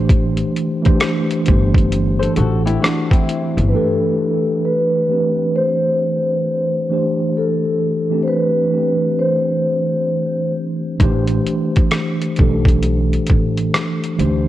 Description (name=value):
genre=lo-fi hip hop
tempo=66 BPM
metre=4/4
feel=swing 63% on 16ths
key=A minor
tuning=A4 = 439 Hz
part: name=mellow tine electric piano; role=accompaniment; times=0.0-14.5 s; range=E3 to C5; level=-19 LUFS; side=right 1 dB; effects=medium stereo tremolo, low-pass filter
part: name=upright bass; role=bass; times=0.0-3.7, 11.0-14.5 s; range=G1 to D2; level=-19 LUFS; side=equal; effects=none
part: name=boom bap sampler-style drum kit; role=drums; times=0.1-3.7, 11.0-14.5 s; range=hi-hat, kick drum, rim click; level=-16 LUFS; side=equal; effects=none
part: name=flamenco guitar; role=second line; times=2.2-3.7 s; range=C4 to C5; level=-24 LUFS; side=left 4 dB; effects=low-pass filter, analog delay
part: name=vibraphone with soft mallets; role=melody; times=3.7-10.5 s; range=A4 to C5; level=-18 LUFS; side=equal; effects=low-pass filter
room=moderate echo chamber reverb, RT60 2.3 s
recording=worn, warbling old tape, cassette tape, warbly pitch drift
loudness=-15 LUFS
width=side -14 dB against mid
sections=0.0-3.7 A section; 3.7-14.5 B section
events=none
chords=0.0 Am7; 6.9 D7sus4; 11.0 Am7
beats=| 0.09 1.00 1.91 2.82 | 3.73 4.64 5.54 6.45 | 7.36 8.27 9.18 10.09 | 11.00 11.91 12.82 13.73